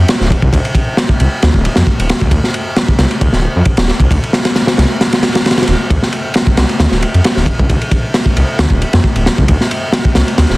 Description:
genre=breakbeat, breaks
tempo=134 BPM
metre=4/4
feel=swing 53% on 16ths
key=D minor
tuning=A4 = 445 Hz
part: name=detuned saw bass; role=bass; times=0.0-10.6 s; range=D1 to F2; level=-12 LUFS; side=equal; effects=none
part: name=crunchy breakbeat drum kit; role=drums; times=0.1-10.6 s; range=kick drum, ride cymbal, snare drum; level=-11 LUFS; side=equal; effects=none
room=little or no reverb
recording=dense, heavily limited modern master, vinyl crackle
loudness=-10 LUFS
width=side -21 dB against mid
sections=0.0-10.6 A section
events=none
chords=none

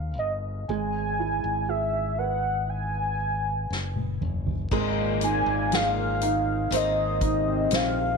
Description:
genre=pop ballad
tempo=60 BPM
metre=4/4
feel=straight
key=Ab major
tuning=A4 = 440 Hz
part: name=warm velvety synth lead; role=melody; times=0.0-8.2 s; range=Eb5 to G#5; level=-27 LUFS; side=left 1 dB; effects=chorus, slapback echo
part: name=dark upright piano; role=accompaniment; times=0.0-8.2 s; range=G#3 to C5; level=-30 LUFS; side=right 13 dB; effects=none
part: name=modern bright fingered electric bass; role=bass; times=0.0-8.2 s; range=F#1 to Eb2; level=-31 LUFS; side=left 1 dB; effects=none
part: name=soft-mallet drum kit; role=drums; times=3.7-7.9 s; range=crash cymbal, hi-hat, kick drum, snare drum, toms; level=-30 LUFS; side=left 2 dB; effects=none
part: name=mellow French horn section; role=second line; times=4.7-8.2 s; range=Bb2 to C4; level=-33 LUFS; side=left 12 dB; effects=none
part: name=picked steel-string acoustic guitar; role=arpeggios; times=4.7-8.2 s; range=Ab2 to C5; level=-32 LUFS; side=left 12 dB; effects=slapback echo
room=light reverb, small room ambience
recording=1960s-style stereo with parts hard left and right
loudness=-24 LUFS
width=side -4 dB against mid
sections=0.0-4.7 A section; 4.7-8.2 B section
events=drum fill 3.7-4.7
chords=0.0 Ab5; 0.7 Eadd9/G#; 4.7 Abadd9

